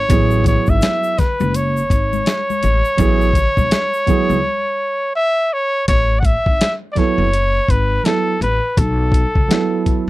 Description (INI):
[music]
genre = hip hop, jazz-hop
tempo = 83 BPM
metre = 4/4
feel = swing 61% on 16ths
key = A major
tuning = A4 = 439 Hz
[part]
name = warm trumpet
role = melody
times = 0.0-10.1 s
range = A4 to F#5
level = -18 LUFS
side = equal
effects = none
[part]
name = dark baby grand piano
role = accompaniment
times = 0.1-10.0 s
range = F#3 to A4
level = -19 LUFS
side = right 6 dB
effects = none
[part]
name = upright bass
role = bass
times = 0.1-10.1 s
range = F#1 to C#2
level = -18 LUFS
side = left 1 dB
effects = none
[part]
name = boom bap sampler-style drum kit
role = drums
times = 0.1-10.1 s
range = hi-hat, kick drum, snare drum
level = -17 LUFS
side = left 1 dB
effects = none
[part]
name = tube shaker and congas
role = percussion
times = 0.1-4.4 s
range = none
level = -28 LUFS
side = left 11 dB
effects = none
[sound]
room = light reverb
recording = dry, close 1970s-style studio recording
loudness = -14 LUFS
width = side -17 dB against mid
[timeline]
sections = 0.0-5.9 A section; 5.9-10.1 A section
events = break 4.4-5.9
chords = 0.1 A69; 8.8 B7(no3)